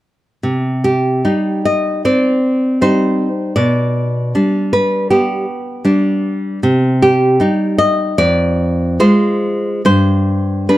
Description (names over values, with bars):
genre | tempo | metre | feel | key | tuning
romantic piece for solo classical guitar | 76 BPM | 4/4 | uneven beats, rubato | C minor | A4 = 437 Hz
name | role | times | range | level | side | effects
nylon-string guitar | solo | 0.4-10.8 s | F2 to Eb5 | -12 LUFS | equal | none
room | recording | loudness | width
small room reverb | dry, close 1970s-style studio recording | -12 LUFS | side -15 dB against mid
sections
0.4-10.8 A section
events
none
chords
0.4 Cm; 3.6 G/B; 6.6 Cm; 8.2 Fm; 9.8 N.C.